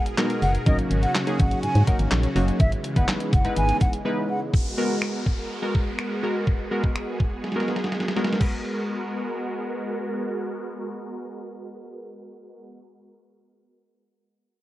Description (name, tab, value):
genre	dance-pop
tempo	124 BPM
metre	4/4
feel	straight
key	G# minor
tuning	A4 = 437 Hz
part	breathy mellow silver concert flute	melody	0.0-4.4 s	D#5 to G#5	-28 LUFS	equal	sidechain pumping
part	glassy wavetable pluck	accompaniment	0.0-12.7 s	F#3 to B4	-28 LUFS	equal	chorus, sidechain pumping, low-pass filter
part	supersaw pad	sustained chords	0.0-12.7 s	B2 to A#4	-31 LUFS	equal	phaser, sidechain pumping, low-pass filter
part	detuned 8-bit digital drum machine	drums	0.1-8.5 s	crash cymbal, finger snaps, handclaps, hi-hat, kick drum, snare drum	-24 LUFS	equal	none
part	organ-like FM bass	bass	0.4-3.7 s	F#1 to G#2	-22 LUFS	equal	sidechain pumping
part	downlifter	sound effects	4.5-8.4 s	none	-38 LUFS	equal	none
room	light reverb, digital ambience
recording	worn, warbling old tape, cassette tape, warbly pitch drift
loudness	-22 LUFS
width	side -15 dB against mid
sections	0.0-4.5 A section; 4.5-8.4 B section; 8.4-12.3 C section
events	drop 0.0-4.5; break 4.1-4.5; drum fill 7.4-8.4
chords	0.0 G#m9; 0.7 D#m7/G#; 2.6 Emaj7; 4.5 G#m9